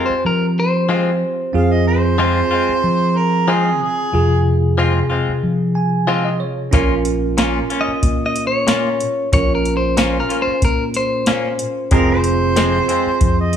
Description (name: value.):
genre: straight-eighth soul blues.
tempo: 93 BPM.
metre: 4/4.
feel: swing 53% on 16ths.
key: F minor.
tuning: A4 = 440 Hz.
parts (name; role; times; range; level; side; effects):
clean electric guitar; melody; 0.0-1.8, 7.8-12.2 s; Bb4 to Eb5; -20 LUFS; left 3 dB; none.
bell-like tine electric piano; accompaniment; 0.0-13.6 s; C3 to Ab5; -21 LUFS; right 3 dB; fast stereo tremolo.
direct-recorded clean electric guitar; stabs; 0.0-13.1 s; F2 to F4; -22 LUFS; left 4 dB; none.
fingered electric bass; bass; 0.1-13.6 s; F1 to F3; -20 LUFS; equal; none.
mellow harmonica; second line; 1.6-4.4, 11.9-13.6 s; Ab4 to F5; -19 LUFS; right 2 dB; overdrive.
soft vintage rhythm box; drums; 6.7-13.6 s; hi-hat, kick drum, snare drum; -18 LUFS; equal; none.
room: moderate large studio reverb, RT60 1.2 s.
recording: band playing live in one room.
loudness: -14 LUFS.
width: side -8 dB against mid.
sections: 0.0-13.6 A section.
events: tine electric piano fill 5.4-6.7.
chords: 0.0 Fm; 6.7 Bbm; 11.9 Fm.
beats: 0.25 0.90 | 1.55 2.19 2.84 3.49 | 4.14 4.79 5.43 6.08 | 6.73 7.38 8.03 8.68 | 9.33 9.97 10.62 11.27 | 11.92 12.57 13.21.